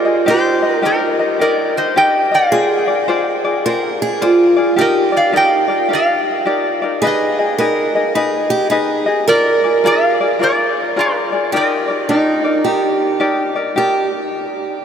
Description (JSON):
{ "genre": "Hawaiian", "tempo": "107 BPM", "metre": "4/4", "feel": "swing 64% on 8ths", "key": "Eb major", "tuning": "A4 = 437 Hz", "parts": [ { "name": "metal-body resonator slide guitar", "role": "melody", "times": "0.0-13.2 s", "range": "F4 to G5", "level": "-17 LUFS", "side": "equal", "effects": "none" }, { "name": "picked steel-string acoustic guitar", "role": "second line", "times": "0.0-14.1 s", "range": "Eb4 to Bb4", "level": "-17 LUFS", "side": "right 2 dB", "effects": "none" }, { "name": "tenor ukulele", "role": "accompaniment", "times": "0.0-14.1 s", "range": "Eb4 to Eb5", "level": "-18 LUFS", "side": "left 3 dB", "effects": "none" } ], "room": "wet huge ambient reverb, RT60 8.0 s", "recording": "in a vast, echoing space", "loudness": "-13 LUFS", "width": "side -8 dB against mid", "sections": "0.0-13.8 A section; 13.8-14.8 B section", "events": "none", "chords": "0.3 Eb; 2.5 Dm7b5; 4.8 Ebmaj7; 7.0 Abm; 9.3 Bb7; 11.5 Ebmaj7" }